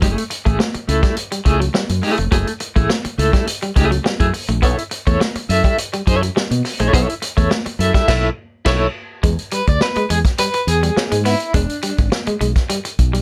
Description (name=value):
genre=funk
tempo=104 BPM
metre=4/4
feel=straight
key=E mixolydian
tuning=A4 = 440 Hz
part: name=clean electric guitar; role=accompaniment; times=0.0-12.1 s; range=A3 to E5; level=-22 LUFS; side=equal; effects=tremolo
part: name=electric guitar at the edge of break-up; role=riff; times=0.0-13.2 s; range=F#3 to B3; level=-26 LUFS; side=equal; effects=none
part: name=fingered electric bass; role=bass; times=0.0-13.2 s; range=E1 to B2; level=-22 LUFS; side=equal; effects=none
part: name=vintage drum kit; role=drums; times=0.0-13.2 s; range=crash cymbal, hi-hat, kick drum, snare drum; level=-21 LUFS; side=equal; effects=none
room=little or no reverb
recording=none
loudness=-18 LUFS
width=mono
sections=0.0-9.2 A section; 9.2-13.2 B section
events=band accent 8.1-9.2; clean electric guitar solo 9.2-13.2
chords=0.0 F#m9; 4.6 B9sus4; 9.2 E7